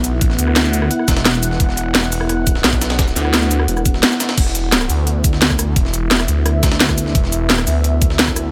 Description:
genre	dark technical drum and bass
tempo	173 BPM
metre	4/4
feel	straight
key	unclear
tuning	A4 = 440 Hz
part	deep dark ambient pad	sustained chords	0.0-8.5 s	B3 to F#5	-26 LUFS	equal	chorus, built-in reverb, sidechain pumping
part	phased detuned saw bass	bass	0.0-8.5 s	E1 to D2	-20 LUFS	equal	phaser, sidechain pumping
part	breakbeat sampler-style drum kit	drums	0.0-8.4 s	hi-hat, snare drum	-27 LUFS	equal	none
part	drum and bass drum kit	drums	0.0-8.4 s	cabasa, crash cymbal, hi-hat, rim click, snare drum	-19 LUFS	equal	none
part	electronic kick drum	drums	0.2-8.3 s	none	-20 LUFS	equal	none
room	light reverb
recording	none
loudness	-16 LUFS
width	mono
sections	0.0-4.4 A section; 4.4-8.5 A section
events	drop 0.0-4.4, 4.4-8.5; band accent 4.0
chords	0.0 E5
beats	| 0.21 0.56 0.91 1.25 | 1.60 1.95 2.29 2.64 | 2.99 3.33 3.68 4.03 | 4.38 4.72 5.07 5.42 | 5.76 6.11 6.46 6.80 | 7.15 7.50 7.84 8.19

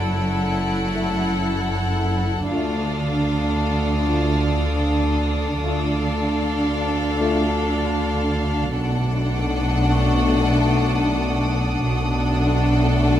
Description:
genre	cinematic, suspense film score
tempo	77 BPM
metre	4/4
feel	straight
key	unclear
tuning	A4 = 439 Hz
part	warm chamber violin section	melody	0.0-13.2 s	F5 to F#5	-30 LUFS	left 1 dB	none
part	warm chamber violin section	second line	0.0-13.2 s	A4	-28 LUFS	left 3 dB	none
part	warm chamber viola section	accompaniment	0.0-13.2 s	D4 to E4	-26 LUFS	right 1 dB	none
part	clear chamber double bass section	bass	0.0-13.2 s	F#1 to D2	-22 LUFS	right 1 dB	none
part	dark chamber cello section	bass	0.0-13.2 s	F#2 to D3	-27 LUFS	right 1 dB	none
part	vibraphone with soft mallets	texture	0.0-2.5, 9.9-13.2 s	B4 to C#6	-38 LUFS	right 1 dB	none
part	warm chamber violin section	texture	0.0-13.2 s	C#5 to D7	-35 LUFS	right 1 dB	none
part	mellow French horn section	sustained chords	0.9-13.2 s	A3 to F4	-26 LUFS	left 4 dB	none
room	moderate recital hall reverb, RT60 1.6 s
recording	none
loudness	-18 LUFS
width	side -11 dB against mid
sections	0.0-13.2 A section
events	none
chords	0.0 F#m7; 2.5 Dm; 8.7 Bm7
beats	0.17 0.95 1.73 | 2.51 3.29 4.07 4.84 | 5.62 6.40 7.18 7.96 | 8.74 9.52 10.30 11.08 | 11.86 12.64

